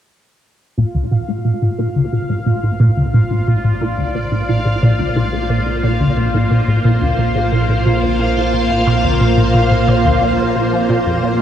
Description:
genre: ambient, sequencer-driven space music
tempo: 89 BPM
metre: 4/4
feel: straight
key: unclear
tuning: A4 = 439 Hz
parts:
  - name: string machine, full ensemble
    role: sustained chords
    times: 0.8-11.4 s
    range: Bb3 to F5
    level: -18 LUFS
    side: equal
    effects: phaser, ensemble chorus
  - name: resonant blip pluck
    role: riff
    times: 0.8-11.4 s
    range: D2 to F3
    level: -15 LUFS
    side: equal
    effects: phaser, ensemble chorus, tape echo
  - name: fat analog bass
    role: bass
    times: 0.8-11.4 s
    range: Bb1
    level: -24 LUFS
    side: equal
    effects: tube saturation
  - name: bubbling stepped-filter texture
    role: texture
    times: 0.8-11.4 s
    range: F4 to F5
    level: -24 LUFS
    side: left 2 dB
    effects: chorus, built-in reverb
room: moderate huge ambient reverb, RT60 8.4 s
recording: none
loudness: -13 LUFS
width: side -10 dB against mid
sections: 0.8-11.4 A section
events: fade-in on string machine 0.8-11.4; fade-in on analog synth bass 0.8-11.4; filter sweep on synth arpeggio sound 0.8-11.4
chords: 0.8 Bb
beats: | 0.78 1.45 2.12 2.80 | 3.47 4.15 4.82 5.50 | 6.17 6.84 7.52 8.19 | 8.87 9.54 10.21 10.89

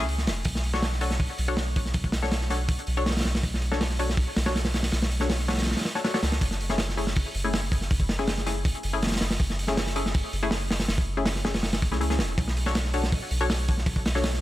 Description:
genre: drum and bass, jungle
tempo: 161 BPM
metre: 4/4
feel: straight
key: unclear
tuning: A4 = 439 Hz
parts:
  - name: filtered dub chord stab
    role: stabs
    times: 0.0-14.2 s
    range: A3 to C#5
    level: -31 LUFS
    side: left 3 dB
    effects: chorus, vintage 12-bit sampler grit, dub echo
  - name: soft dub sub bass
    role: bass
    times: 0.0-14.4 s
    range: E1 to C#2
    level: -28 LUFS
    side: equal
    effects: none
  - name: crunchy breakbeat drum kit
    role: drums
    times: 0.1-14.4 s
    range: hi-hat, kick drum, snare drum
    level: -26 LUFS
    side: equal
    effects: none
room: studio reverb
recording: none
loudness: -24 LUFS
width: side -15 dB against mid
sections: 0.0-14.4 A section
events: none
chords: 0.5 Bm9; 6.4 F#m9; 12.4 Bm9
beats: 0.08 | 0.45 0.83 1.20 1.57 | 1.95 2.32 2.69 3.06 | 3.44 3.81 4.18 4.55 | 4.93 5.30 5.67 6.04 | 6.42 6.79 7.16 7.54 | 7.91 8.28 8.65 9.03 | 9.40 9.77 10.14 10.52 | 10.89 11.26 11.63 12.01 | 12.38 12.75 13.12 13.50 | 13.87 14.24

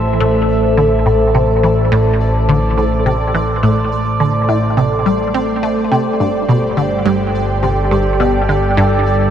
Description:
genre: ambient, sequencer-driven space music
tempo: 105 BPM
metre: 4/4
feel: straight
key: A minor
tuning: A4 = 440 Hz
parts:
  - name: evolving wavetable pad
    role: sustained chords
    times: 0.0-9.3 s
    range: G3 to E5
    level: -16 LUFS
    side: equal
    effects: phaser, built-in reverb
  - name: resonant blip pluck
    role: riff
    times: 0.0-9.0 s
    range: G2 to C4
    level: -17 LUFS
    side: equal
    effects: phaser, analog chorus, tape echo
  - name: fat analog bass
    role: bass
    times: 0.0-9.3 s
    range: G1 to A1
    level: -17 LUFS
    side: equal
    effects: none
  - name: pulsing gated texture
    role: texture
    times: 0.0-9.3 s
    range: D5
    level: -30 LUFS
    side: right 2 dB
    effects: chorus, built-in reverb
room: wet lush hall reverb, RT60 2.9 s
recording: dark, warm production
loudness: -12 LUFS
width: side -9 dB against mid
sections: 0.0-9.3 A section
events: fade-in on synth texture 0.0-9.3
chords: 0.0 Am; 5.9 Gsus2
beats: 0.20 0.77 | 1.34 1.92 2.49 3.06 | 3.63 4.20 4.77 5.34 | 5.92 6.49 7.06 7.63 | 8.20 8.77

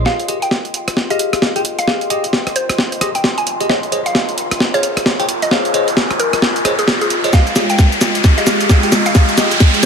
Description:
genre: UK garage, two-step garage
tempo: 132 BPM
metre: 4/4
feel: swing 60% on 16ths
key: F minor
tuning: A4 = 440 Hz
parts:
  - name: warm analog pad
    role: sustained chords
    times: 0.0-9.9 s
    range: Ab3 to C6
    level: -27 LUFS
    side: right 4 dB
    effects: chorus, sidechain pumping
  - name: warbly tape-like pad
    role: texture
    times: 0.0-9.9 s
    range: F4 to Ab5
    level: -26 LUFS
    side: equal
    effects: chorus, built-in reverb, sidechain pumping
  - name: mallet-like synth pluck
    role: melody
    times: 0.1-9.9 s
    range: Ab4 to Ab5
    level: -22 LUFS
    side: left 1 dB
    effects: chorus, tape echo
  - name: bell-like tine electric piano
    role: stabs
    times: 0.1-9.5 s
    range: G4 to G5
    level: -21 LUFS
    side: left 2 dB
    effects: phaser, low-pass filter, tape echo
  - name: breakbeat sampler-style drum kit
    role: drums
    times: 0.1-9.9 s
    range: cabasa, hi-hat, rim click, snare drum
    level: -17 LUFS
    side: equal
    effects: analog delay
  - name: riser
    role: sound effects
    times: 1.6-9.9 s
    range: none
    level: -20 LUFS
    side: equal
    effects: none
  - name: electronic kick drum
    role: drums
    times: 7.3-9.7 s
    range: none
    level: -10 LUFS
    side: equal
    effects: overdrive
room: moderate echo chamber reverb, RT60 1.4 s, digital ambience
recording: echo-heavy mix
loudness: -12 LUFS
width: side -6 dB against mid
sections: 0.1-9.9 A section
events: build-up 0.1-9.9; drum fill 0.1-9.9; filter sweep on analog synth pad 0.1-9.9; riser 1.6-9.9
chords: 0.1 Fm9; 3.7 Bbm11; 7.3 Fm9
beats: | 0.06 0.51 0.97 1.42 | 1.88 2.33 2.79 3.24 | 3.69 4.15 4.60 5.06 | 5.51 5.97 6.42 6.88 | 7.33 7.79 8.24 8.70 | 9.15 9.60

